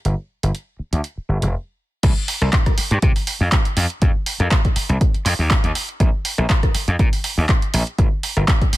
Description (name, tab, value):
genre	filtered disco house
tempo	121 BPM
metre	4/4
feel	swing 54% on 16ths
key	C minor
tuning	A4 = 440 Hz
part	gritty slap bass	bass	0.1-8.8 s	F1 to C3	-19 LUFS	equal	overdrive, sidechain pumping, low-pass filter
part	punchy analog drum machine	drums	0.1-8.8 s	crash cymbal, handclaps, hi-hat, rim click	-23 LUFS	right 1 dB	sidechain pumping on hats, sidechain pumping on cymbals
part	electronic kick drum	drums	2.0-8.7 s	none	-17 LUFS	equal	none
room	little or no reverb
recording	none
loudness	-17 LUFS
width	side -17 dB against mid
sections	0.0-2.0 A section; 2.0-8.8 B section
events	filter sweep on slap bass 0.0-2.0; stop 1.5-2.0; drop 2.0-8.8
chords	none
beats	| 0.05 0.55 1.04 1.54 | 2.03 2.53 3.03 3.52 | 4.02 4.51 5.01 5.50 | 6.00 6.50 6.99 7.49 | 7.99 8.48